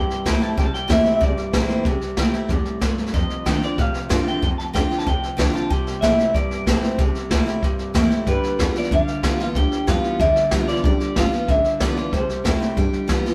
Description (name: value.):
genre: rockabilly.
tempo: 187 BPM.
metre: 4/4.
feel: straight.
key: C major.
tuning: A4 = 437 Hz.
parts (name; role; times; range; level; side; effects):
electric guitar through a small old amp; melody; 0.0-12.4 s; B4 to A5; -26 LUFS; equal; phaser.
picked steel-string acoustic guitar; accompaniment; 0.0-13.3 s; F2 to F4; -27 LUFS; equal; none.
electric guitar through a small old amp; riff; 0.0-13.3 s; F2 to A3; -29 LUFS; equal; none.
upright bass; bass; 0.0-13.3 s; G1 to B2; -28 LUFS; equal; none.
jazz brush drum kit; drums; 0.1-13.3 s; hi-hat, kick drum, snare drum; -25 LUFS; equal; none.
room: moderate stone room reverb, RT60 1.2 s.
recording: band playing live in one room.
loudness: -20 LUFS.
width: mono.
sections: 0.0-13.3 A section.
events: none.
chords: 0.0 C7; 3.1 F7; 5.7 C7; 8.3 G7; 12.1 C7; 12.8 G7.